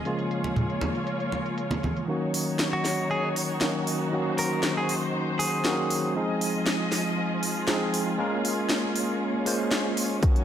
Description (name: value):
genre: nu-disco, nu disco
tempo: 118 BPM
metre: 4/4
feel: straight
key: Eb dorian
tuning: A4 = 442 Hz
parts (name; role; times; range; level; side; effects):
- barky tine electric piano; accompaniment; 0.0-10.4 s; Db3 to C5; -28 LUFS; equal; medium stereo tremolo, sidechain pumping, low-pass filter, slapback echo
- muted studio string section; sustained chords; 0.0-10.4 s; Eb3 to Eb5; -31 LUFS; left 1 dB; sidechain pumping
- house drum kit; drums; 0.1-10.4 s; hi-hat, snare drum; -29 LUFS; equal; low-pass filter on hats, small room ambience, low-pass filter on snare
- congas; percussion; 0.4-1.9 s; none; -30 LUFS; right 1 dB; none
- direct-recorded clean electric guitar; melody; 2.7-6.1 s; Gb4 to Bb4; -30 LUFS; equal; vintage 12-bit sampler grit, tape echo
- electronic kick drum; drums; 10.2-10.3 s; none; -20 LUFS; equal; small room ambience
- riser; sound effects; 10.2-10.4 s; none; barely audible; none; none
room: moderate echo chamber reverb, RT60 1.7 s, digital ambience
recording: none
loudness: -24 LUFS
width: side -9 dB against mid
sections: 0.0-2.1 A section; 2.1-10.4 B section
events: filter sweep on tine electric piano 0.0-2.1, 2.1-10.4; build-up 2.1-10.4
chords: 0.1 Bbm7; 2.1 Ebm7; 6.2 Fm7; 8.2 Bbm7